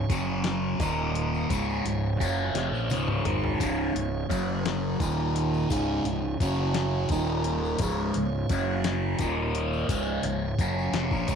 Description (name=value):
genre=psychedelic rock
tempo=57 BPM (dotted quarters)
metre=6/8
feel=straight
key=Db major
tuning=A4 = 436 Hz
part: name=tonewheel organ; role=sustained chords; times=0.0-11.4 s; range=Eb3 to Eb5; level=-36 LUFS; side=right 10 dB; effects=slow rotary speaker
part: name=thick fuzz guitar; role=riff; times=0.0-11.4 s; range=Db2 to Ab3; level=-27 LUFS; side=equal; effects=distortion, phaser
part: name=fuzz fingered electric bass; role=bass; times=0.0-11.4 s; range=Db1 to Bb1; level=-32 LUFS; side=equal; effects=overdrive
part: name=dusty soul sampler-style drum kit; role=drums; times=0.1-11.4 s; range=hi-hat, kick drum, snare drum, toms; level=-30 LUFS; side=left 3 dB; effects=none
part: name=tambourine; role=percussion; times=0.1-11.4 s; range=none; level=-45 LUFS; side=left 12 dB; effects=none
room=light reverb, digital ambience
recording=1960s-style stereo with parts hard left and right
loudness=-25 LUFS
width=side -7 dB against mid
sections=0.0-11.4 A section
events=drum fill 2.5-3.6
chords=0.1 Gb5; 0.8 Eb5; 1.5 Db; 4.3 Gb5; 5.0 Eb5; 5.7 Db; 6.4 Gb5; 7.1 Eb5; 7.8 Db; 8.5 Gb5; 9.2 Eb5; 9.9 Db